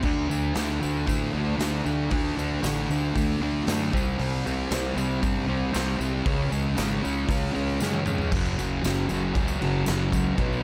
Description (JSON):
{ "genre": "garage rock duo or trio", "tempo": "116 BPM", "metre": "4/4", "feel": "straight", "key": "unclear", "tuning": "A4 = 440 Hz", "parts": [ { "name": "fuzz guitar", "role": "riff", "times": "0.0-10.6 s", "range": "F#2 to D4", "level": "-28 LUFS", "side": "equal", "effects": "distortion" }, { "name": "fuzz fingered electric bass", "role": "bass", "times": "0.0-10.6 s", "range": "F#1 to A2", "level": "-34 LUFS", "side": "equal", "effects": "overdrive" }, { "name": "raw garage drum kit", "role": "drums", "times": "0.0-10.5 s", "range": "crash cymbal, hi-hat, kick drum, ride cymbal, snare drum, toms", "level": "-32 LUFS", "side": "equal", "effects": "none" }, { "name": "tambourine", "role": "percussion", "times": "0.3-10.6 s", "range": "none", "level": "-44 LUFS", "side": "equal", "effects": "none" } ], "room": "little or no reverb", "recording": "none", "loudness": "-26 LUFS", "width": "mono", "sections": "0.0-8.3 A section; 8.3-10.6 B section", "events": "drum fill 7.8-8.3", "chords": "0.0 D5; 3.9 C5; 6.3 C#5; 8.3 F#5", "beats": "| 0.04 0.56 1.08 1.60 | 2.12 2.64 3.16 3.68 | 4.19 4.71 5.23 5.74 | 6.26 6.78 7.29 7.81 | 8.32 8.84 9.35 9.87 | 10.38" }